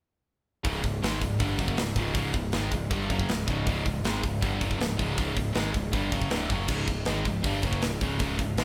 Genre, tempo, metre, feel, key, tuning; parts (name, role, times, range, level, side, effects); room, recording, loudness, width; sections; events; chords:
heavy metal; 159 BPM; 4/4; straight; A4 = 440 Hz
high-gain distorted guitar; riff; 0.6-8.6 s; C#2 to G#3; -36 LUFS; equal; distortion
sludgy distorted guitar; riff; 0.6-8.6 s; C#2 to G#3; -34 LUFS; equal; overdrive
overdriven picked electric bass; bass; 0.6-8.6 s; C#1 to G#1; -36 LUFS; equal
tight metal drum kit; drums; 0.6-8.6 s; crash cymbal, hi-hat, kick drum, snare drum; -32 LUFS; equal
moderate large studio reverb, RT60 0.9 s; band playing live in one room; -28 LUFS; mono
0.6-8.6 A section
0.6 C#5